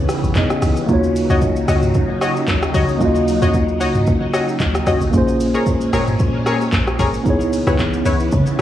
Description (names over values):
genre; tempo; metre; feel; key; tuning
amapiano; 113 BPM; 4/4; swing 55% on 16ths; unclear; A4 = 439 Hz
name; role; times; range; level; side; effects
mellow tine electric piano; accompaniment; 0.0-8.6 s; Bb3 to Eb5; -20 LUFS; right 1 dB; medium stereo tremolo
phased string machine; sustained chords; 0.0-8.6 s; Bb2 to Eb4; -24 LUFS; equal; ensemble chorus, phaser
deep log drum bass; bass; 0.0-8.6 s; Ab1 to Db3; -20 LUFS; equal; none
smooth R&B drum kit; drums; 0.1-8.6 s; handclaps, hi-hat, kick drum, rim click, shaker, toms; -20 LUFS; equal; none
analog pluck; stabs; 1.3-8.6 s; Fb4 to Eb5; -23 LUFS; left 3 dB; chorus, digital delay
room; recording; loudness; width
light reverb, digital ambience; worn, warbling old tape, cassette tape, warbly pitch drift, small room ambience; -14 LUFS; side -12 dB against mid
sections
0.0-8.6 A section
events
none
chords
0.0 Dbm7; 0.9 Ebm7; 5.1 Bbm7; 7.3 Dbm7